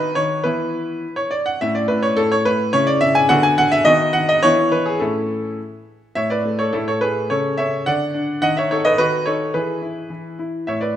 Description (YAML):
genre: classical-period piano sonatina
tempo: 106 BPM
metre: 2/4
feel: rubato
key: A major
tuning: A4 = 440 Hz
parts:
  - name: clear concert grand piano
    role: solo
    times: 0.0-11.0 s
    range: A2 to G#5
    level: -16 LUFS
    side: equal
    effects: none
room: moderate recital hall reverb, RT60 1.6 s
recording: none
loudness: -16 LUFS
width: side -10 dB against mid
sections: 0.0-6.2 A section; 6.2-11.0 A section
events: none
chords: 0.5 E5; 1.6 A; 2.7 C#m; 3.3 Bm/D; 3.9 B/D#; 4.4 E5; 5.0 A; 7.3 A/C#; 7.9 N.C.; 8.4 B7/D#; 9.5 E